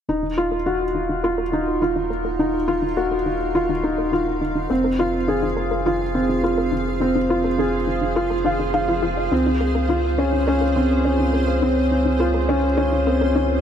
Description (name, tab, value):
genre	electronica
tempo	104 BPM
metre	4/4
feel	straight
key	unclear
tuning	A4 = 435 Hz
part	granular cloud pad	sustained chords	1.6-13.6 s	Eb4 to F5	-31 LUFS	equal	built-in reverb
part	soft round pluck	arpeggios	0.1-13.4 s	Eb4 to Eb5	-27 LUFS	left 1 dB	chorus, digital delay
part	felt-muted upright piano	riff	0.1-13.6 s	C4 to F5	-20 LUFS	equal	digital delay
part	warm sub bass	bass	0.1-13.6 s	Eb1 to Db2	-26 LUFS	equal	none
room	moderate huge ambient reverb, RT60 8.9 s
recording	none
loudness	-18 LUFS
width	side -8 dB against mid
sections	0.1-13.6 A section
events	fade-in on ambient pad 0.1-13.6; filter sweep on synth arpeggio sound 0.1-13.6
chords	0.1 Ebmadd9; 4.7 Fm; 9.3 Dbmaj7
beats	| 0.09 0.67 1.24 1.82 | 2.40 2.97 3.55 4.13 | 4.70 5.28 5.86 6.43 | 7.01 7.59 8.17 8.74 | 9.32 9.90 10.47 11.05 | 11.63 12.20 12.78 13.36